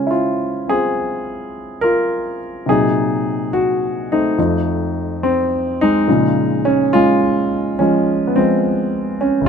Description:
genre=solo jazz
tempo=71 BPM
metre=4/4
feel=swing 69% on 8ths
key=Bb minor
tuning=A4 = 438 Hz
part: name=warm concert grand piano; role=solo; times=0.0-9.5 s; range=D2 to C5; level=-15 LUFS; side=equal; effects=none
room=light reverb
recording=none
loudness=-15 LUFS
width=side -7 dB against mid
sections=0.0-9.5 A section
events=none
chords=0.0 Dbmaj7; 2.7 Cm7b5; 4.4 F7; 6.1 Bbm7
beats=0.12 0.97 1.82 | 2.67 3.52 4.37 5.22 | 6.07 6.92 7.77 8.62 | 9.46

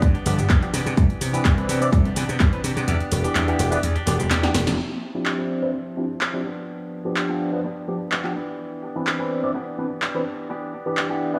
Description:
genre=filtered disco house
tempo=126 BPM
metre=4/4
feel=straight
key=unclear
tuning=A4 = 441 Hz
part: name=direct-recorded clean electric guitar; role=riff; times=0.0-11.4 s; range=E3 to G4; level=-33 LUFS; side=equal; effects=sidechain pumping, low-pass filter
part: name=slap bass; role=bass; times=0.0-4.7 s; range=E1 to C3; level=-25 LUFS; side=equal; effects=sidechain pumping, low-pass filter
part: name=electronic kick drum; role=drums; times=0.0-2.5 s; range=none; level=-20 LUFS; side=equal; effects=none
part: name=punchy analog drum machine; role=drums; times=0.0-11.1 s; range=handclaps, hi-hat, shaker, snare drum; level=-30 LUFS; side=equal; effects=sidechain pumping on hats, sidechain pumping on perc
part: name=barky tine electric piano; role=accompaniment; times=0.3-11.4 s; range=E3 to D5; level=-28 LUFS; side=equal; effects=phaser, sidechain pumping, low-pass filter
room=light reverb, digital ambience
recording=small room ambience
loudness=-23 LUFS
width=mono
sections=0.0-4.8 A section; 4.8-11.4 B section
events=kick drops out 2.9-4.8; drum fill 4.3-4.8; band accent 4.7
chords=0.0 G7; 0.7 Cmaj9; 2.9 Em7; 4.8 Dm11; 6.5 G7; 8.4 Cmaj9; 10.5 Em7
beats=0.02 0.50 | 0.97 1.45 1.93 2.40 | 2.88 3.36 3.83 4.31 | 4.79 5.26 5.74 6.21 | 6.69 7.17 7.64 8.12 | 8.59 9.07 9.55 10.02 | 10.50 10.97

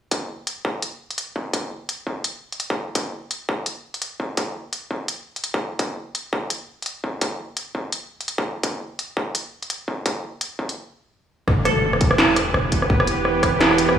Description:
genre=half-time drum and bass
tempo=169 BPM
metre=4/4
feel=swing 58% on 16ths, half-time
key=E minor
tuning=A4 = 439 Hz
part: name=electronic kick drum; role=drums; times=0.1-13.5 s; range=none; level=-25 LUFS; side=equal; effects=distortion, high-pass filter on kick
part: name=industrial drum kit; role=drums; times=0.1-13.9 s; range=hi-hat, rim click, snare drum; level=-22 LUFS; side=equal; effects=none
part: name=bowed-like drone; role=sustained chords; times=12.4-14.0 s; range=E3 to B4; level=-22 LUFS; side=right 3 dB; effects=built-in reverb, sidechain pumping
part: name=long sustained 808-style bass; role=bass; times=11.5-14.0 s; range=E1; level=-26 LUFS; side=equal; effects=none
part: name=impact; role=sound effects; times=11.5-12.9 s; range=none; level=-26 LUFS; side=equal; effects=none
part: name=glassy wavetable pluck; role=melody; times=11.7-11.9 s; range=A4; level=-26 LUFS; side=equal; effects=chorus, digital delay
room=moderate lush hall reverb, RT60 2.0 s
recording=studio reverb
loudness=-22 LUFS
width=side -9 dB against mid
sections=0.1-11.5 A section; 11.5-14.0 B section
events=stop 10.8-11.5; drop 11.5-14.0; impact 11.5-12.9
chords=0.1 N.C.; 11.5 Em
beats=| 0.12 0.47 0.82 1.18 | 1.53 1.89 2.25 2.60 | 2.96 3.31 3.67 4.02 | 4.38 4.73 5.09 5.44 | 5.80 6.15 6.51 6.86 | 7.22 7.57 7.93 8.28 | 8.64 8.99 9.35 9.70 | 10.06 10.41 10.77 11.12 | 11.48 11.83 12.19 12.54 | 12.90 13.25 13.61 13.96

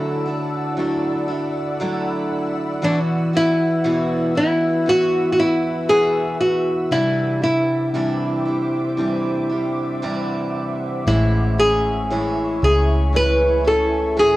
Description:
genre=pop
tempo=58 BPM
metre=4/4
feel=straight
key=unclear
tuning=A4 = 440 Hz
part: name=flamenco guitar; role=melody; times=0.0-14.4 s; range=D4 to B4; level=-19 LUFS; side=equal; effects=cassette tape
part: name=mellow tine electric piano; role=accompaniment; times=0.0-14.4 s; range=C3 to C#5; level=-25 LUFS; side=left 1 dB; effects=medium stereo tremolo, cassette tape
part: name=ethereal airy pad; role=sustained chords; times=0.0-14.4 s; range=E4 to E6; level=-28 LUFS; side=equal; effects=ensemble chorus, built-in reverb, cassette tape, plate reverb
part: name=picked steel-string acoustic guitar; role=arpeggios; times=0.0-14.4 s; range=E2 to F#4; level=-26 LUFS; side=right 2 dB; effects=cassette tape
part: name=vintage muted fingered electric bass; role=bass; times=11.1-14.4 s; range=A1 to C#2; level=-20 LUFS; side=equal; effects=none
room=moderate studio reverb, RT60 0.6 s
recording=home recording on cassette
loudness=-17 LUFS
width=side -17 dB against mid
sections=0.0-14.4 A section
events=none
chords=0.0 Dadd9; 2.8 Esus2; 6.9 Cadd9; 11.1 Amaj7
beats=0.79 1.81 | 2.83 3.85 4.87 5.89 | 6.91 7.94 8.98 10.03 | 11.07 12.11 13.14 14.18

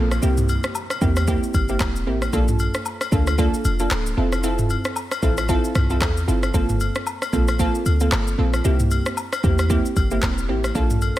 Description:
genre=afrobeats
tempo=114 BPM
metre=4/4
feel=swing 58% on 16ths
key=C mixolydian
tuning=A4 = 435 Hz
part: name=glassy wavetable pluck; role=accompaniment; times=0.0-11.2 s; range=Bb3 to A4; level=-24 LUFS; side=right 2 dB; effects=chorus
part: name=clean 808-style bass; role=bass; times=0.0-11.1 s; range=D1 to E2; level=-21 LUFS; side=equal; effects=none
part: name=downlifter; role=sound effects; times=0.0-2.3 s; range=none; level=-42 LUFS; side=right 1 dB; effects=none
part: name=afro-pop drum kit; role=drums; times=0.1-11.2 s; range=handclaps, kick drum, rim click, shaker, toms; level=-24 LUFS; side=equal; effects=none
part: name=agogo bells and woodblock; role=percussion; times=0.1-11.2 s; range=none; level=-30 LUFS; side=left 6 dB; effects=none
room=digital ambience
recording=none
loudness=-18 LUFS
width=side -14 dB against mid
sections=0.0-11.2 A section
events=none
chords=0.2 C7; 2.3 Bbmaj7; 4.2 Fmaj7; 6.5 Gm11; 8.6 C7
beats=| 0.23 0.75 1.28 1.80 | 2.33 2.86 3.38 3.91 | 4.44 4.96 5.49 6.02 | 6.54 7.07 7.59 8.12 | 8.65 9.17 9.70 10.23 | 10.75

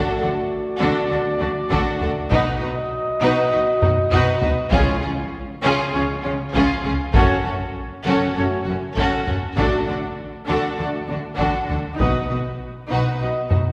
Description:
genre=cinematic, epic orchestral film score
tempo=99 BPM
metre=4/4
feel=straight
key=unclear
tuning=A4 = 443 Hz
part: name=warm symphonic violin section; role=melody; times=0.0-13.6 s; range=F4 to Cb5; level=-30 LUFS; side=equal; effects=none
part: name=rich symphonic violin section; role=second line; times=0.0-13.6 s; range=Db4 to F#4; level=-30 LUFS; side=equal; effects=none
part: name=warm symphonic viola section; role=accompaniment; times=0.0-13.6 s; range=Db4 to Eb4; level=-28 LUFS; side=equal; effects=none
part: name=mellow French horn section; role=sustained chords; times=0.0-13.4 s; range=Gb3 to Gb4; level=-31 LUFS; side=equal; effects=none
part: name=mellow trumpet section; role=stabs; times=0.0-13.4 s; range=Db5 to Eb5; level=-28 LUFS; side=equal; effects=none
part: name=rich symphonic cello section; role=bass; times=0.2-13.6 s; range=Gb2 to D3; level=-30 LUFS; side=equal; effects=none
part: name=warm symphonic double bass section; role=bass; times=0.2-13.6 s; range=Gb1 to D2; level=-31 LUFS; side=equal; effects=none
part: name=taiko ensemble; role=drums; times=1.7-13.7 s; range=none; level=-26 LUFS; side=equal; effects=none
part: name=timpani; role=percussion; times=4.7-5.6 s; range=Db3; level=-33 LUFS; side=equal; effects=none
room=wet concert hall reverb, RT60 2.2 s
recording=recorded in a church or concert hall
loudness=-21 LUFS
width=mono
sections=0.0-13.7 A section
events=drum fill 3.8-4.7, 13.5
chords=0.0 D; 2.3 Cb; 4.7 Db; 7.2 Gbm; 9.6 D; 12.0 Cb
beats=0.50 1.11 1.71 | 2.32 2.92 3.52 4.13 | 4.73 5.34 5.94 6.55 | 7.15 7.76 8.36 8.97 | 9.57 10.18 10.78 11.39 | 11.99 12.60 13.20

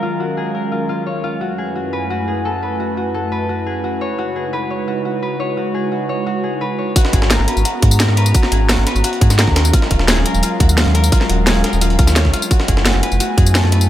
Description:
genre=liquid drum and bass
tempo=173 BPM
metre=4/4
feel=straight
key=G# minor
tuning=A4 = 437 Hz
part: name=airy breathy pad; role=sustained chords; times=0.0-13.9 s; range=F#2 to A#5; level=-22 LUFS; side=right 1 dB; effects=chorus, vintage 12-bit sampler grit, sidechain pumping
part: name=concert harp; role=arpeggios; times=0.0-13.9 s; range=E#4 to C#5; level=-22 LUFS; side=left 3 dB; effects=low-pass filter, dub echo
part: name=drum and bass drum kit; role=drums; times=7.0-13.9 s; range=hi-hat, snare drum, tambourine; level=-19 LUFS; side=equal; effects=overdrive
part: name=electronic kick drum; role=drums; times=7.0-13.4 s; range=none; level=-14 LUFS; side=equal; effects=overdrive
part: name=jungle sampler-style drum kit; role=drums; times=7.0-13.9 s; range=hi-hat, snare drum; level=-22 LUFS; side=equal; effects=high-pass filter on hats, high-pass filter on snare, high-pass filter on room
part: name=sub bass with octave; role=bass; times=7.1-13.9 s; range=D#1 to G#2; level=-15 LUFS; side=equal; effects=none
room=light reverb, digital ambience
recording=none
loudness=-14 LUFS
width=side -12 dB against mid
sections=0.0-7.0 A section; 7.0-13.9 B section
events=drop 7.0-13.9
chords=0.0 D#m11; 1.4 F#m11; 4.0 C#m11; 7.0 G#m11; 9.6 D#m11; 12.5 F#m11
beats=| 0.02 0.37 0.72 1.06 | 1.41 1.76 2.10 2.45 | 2.80 3.15 3.49 3.84 | 4.19 4.53 4.88 5.23 | 5.57 5.92 6.27 6.61 | 6.96 7.31 7.65 8.00 | 8.35 8.70 9.04 9.39 | 9.73 10.08 10.43 10.78 | 11.12 11.47 11.82 12.16 | 12.51 12.86 13.20 13.55

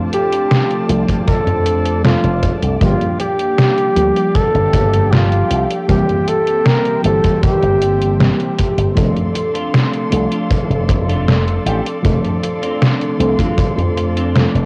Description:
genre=vaporwave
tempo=78 BPM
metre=4/4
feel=straight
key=F major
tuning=A4 = 440 Hz
part: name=mellow FM electric piano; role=accompaniment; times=0.0-14.7 s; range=E3 to A4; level=-22 LUFS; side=equal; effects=analog chorus, cassette tape
part: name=muted studio string section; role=sustained chords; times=0.0-14.7 s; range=F4 to C6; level=-29 LUFS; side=equal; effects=vintage 12-bit sampler grit, cassette tape
part: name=breathy flugelhorn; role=melody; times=0.1-8.2 s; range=F4 to Bb4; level=-20 LUFS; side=equal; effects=tape echo
part: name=detuned 8-bit digital drum machine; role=drums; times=0.1-14.7 s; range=hi-hat, snare drum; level=-19 LUFS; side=equal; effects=overdrive, cassette tape
part: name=slap bass with an envelope filter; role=bass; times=0.9-14.7 s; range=F1 to F2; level=-20 LUFS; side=equal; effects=tube saturation
part: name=kick drum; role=drums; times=1.1-13.7 s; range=none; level=-21 LUFS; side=equal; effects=cassette tape
part: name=clean electric guitar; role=riff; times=9.3-14.4 s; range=A3 to G4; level=-30 LUFS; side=equal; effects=lush chorus, cassette tape, tape echo
room=moderate spring reverb, RT60 2.6 s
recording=home recording on cassette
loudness=-15 LUFS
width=mono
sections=0.0-14.7 A section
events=none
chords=0.0 F6; 2.8 Gm7; 5.9 C7; 9.0 F6; 12.0 Dm7/F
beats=0.51 1.28 2.05 | 2.81 3.58 4.35 5.12 | 5.89 6.66 7.43 8.20 | 8.97 9.74 10.51 11.28 | 12.05 12.81 13.59 14.35

